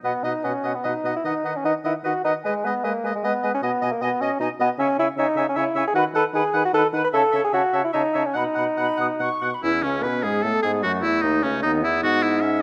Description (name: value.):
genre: quick classical-period movement for wind quintet.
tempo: 151 BPM.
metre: 3/4.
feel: rubato.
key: B major, E major from 4.8 s.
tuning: A4 = 440 Hz.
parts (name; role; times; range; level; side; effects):
silver concert flute; melody; 0.0-12.6 s; C#4 to D#6; -32 LUFS; equal; none.
clear oboe; second line; 0.0-12.6 s; C#4 to F#5; -29 LUFS; equal; none.
bright clarinet; accompaniment; 0.0-12.6 s; A3 to F#5; -33 LUFS; equal; none.
warm French horn; accompaniment; 0.0-12.6 s; B2 to D#4; -31 LUFS; equal; none.
warm bassoon; bass; 0.0-12.6 s; C#2 to B4; -26 LUFS; equal; none.
room: moderate recital hall reverb, RT60 1.6 s.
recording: none.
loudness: -22 LUFS.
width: mono.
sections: 0.0-9.6 A section; 9.6-12.6 B section.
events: none.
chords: 0.0 B; 1.2 B/D#; 2.4 G#m; 3.6 G#m/B; 4.8 C#m; 6.0 B/D#; 7.1 A/C#; 8.4 B; 9.6 E; 10.8 D#dim; 12.0 Emaj13/G#.